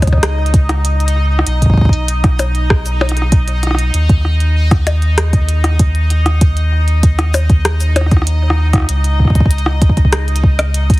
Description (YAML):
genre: IDM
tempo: 97 BPM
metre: 4/4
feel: straight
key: unclear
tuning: A4 = 440 Hz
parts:
  - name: warm sub bass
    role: bass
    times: 0.0-11.0 s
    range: B1 to Eb2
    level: -14 LUFS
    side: equal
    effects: tube saturation
  - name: electronic kick drum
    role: drums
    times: 0.0-11.0 s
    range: none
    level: -10 LUFS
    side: equal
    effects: none
  - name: glitchy drum kit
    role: drums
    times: 0.0-11.0 s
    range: hi-hat, percussion blips, rim click, shaker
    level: -19 LUFS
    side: left 1 dB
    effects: none
  - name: bubbling stepped-filter texture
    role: texture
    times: 0.0-11.0 s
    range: Eb4 to Eb5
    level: -23 LUFS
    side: equal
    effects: chorus, built-in reverb, sidechain pumping
room: little or no reverb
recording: heavily compressed radio sound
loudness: -11 LUFS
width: side -19 dB against mid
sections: 0.0-11.0 A section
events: none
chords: 0.0 Dbsus2; 1.5 B; 3.9 N.C.; 8.9 Dbsus2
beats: 0.23 0.85 | 1.47 2.08 2.70 3.32 | 3.94 4.56 5.18 5.79 | 6.41 7.03 7.65 8.27 | 8.89 9.51 10.12 10.74